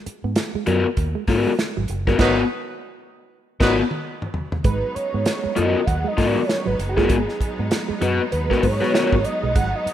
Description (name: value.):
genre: funk.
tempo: 98 BPM.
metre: 4/4.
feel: swing 60% on 16ths.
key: G# minor.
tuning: A4 = 440 Hz.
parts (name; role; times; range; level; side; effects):
clean electric guitar; riff; 0.1-9.9 s; F#3 to B3; -31 LUFS; right 10 dB; none.
vintage muted fingered electric bass; bass; 0.1-9.9 s; F#1 to G#2; -25 LUFS; right 1 dB; none.
warm soul drum kit; drums; 0.1-9.9 s; crash cymbal, hi-hat, kick drum, snare drum, toms; -23 LUFS; right 1 dB; none.
crunchy overdriven guitar; accompaniment; 0.7-9.1 s; B3 to B4; -22 LUFS; left 5 dB; none.
mellow horn section; second line; 2.2-3.8 s; F#3 to B4; -24 LUFS; equal; none.
fat analog lead; melody; 4.6-9.9 s; G#4 to F#5; -24 LUFS; right 3 dB; none.
bright studio string section; sustained chords; 4.7-9.9 s; F#3 to D#4; -30 LUFS; right 1 dB; none.
room: light reverb.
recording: rough home demo mix.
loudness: -18 LUFS.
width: side -11 dB against mid.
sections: 0.0-4.6 A section; 4.6-9.9 B section.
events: band accent 2.2-4.6; drum fill 3.4-4.6; analog synth lead solo 4.6-9.9.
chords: 0.0 G#m9.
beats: 0.36 0.97 1.59 | 2.20 2.81 3.42 4.03 | 4.65 5.26 5.87 6.49 | 7.10 7.71 8.33 8.94 | 9.55.